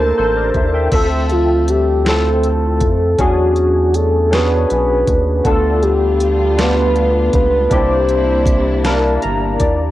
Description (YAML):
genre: slow six-eight R&B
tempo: 53 BPM (dotted quarters)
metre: 6/8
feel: straight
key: D minor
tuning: A4 = 438 Hz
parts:
  - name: soft octave-layered synth lead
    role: melody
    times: 0.0-9.2 s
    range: F4 to C5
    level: -16 LUFS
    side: equal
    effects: chorus, tremolo
  - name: barky tine electric piano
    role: accompaniment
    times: 0.0-9.9 s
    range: A3 to Bb5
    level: -19 LUFS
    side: left 2 dB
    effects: overdrive, ensemble chorus, cassette tape
  - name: dark studio string section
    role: sustained chords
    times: 0.0-0.9, 5.4-9.9 s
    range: C3 to A5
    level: -27 LUFS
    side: equal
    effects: cassette tape
  - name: rubbery square bass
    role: bass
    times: 0.0-9.9 s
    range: G1 to F2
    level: -18 LUFS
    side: equal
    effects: none
  - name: smooth R&B drum kit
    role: drums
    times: 0.5-9.8 s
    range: crash cymbal, hi-hat, kick drum, snare drum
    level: -18 LUFS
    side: equal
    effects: none
room: little or no reverb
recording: home recording on cassette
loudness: -12 LUFS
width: side -14 dB against mid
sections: 0.9-9.9 A section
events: tine electric piano fill 8.8-9.9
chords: 0.0 C13; 0.9 Dm9; 3.2 E13; 5.4 G7/D; 7.7 C9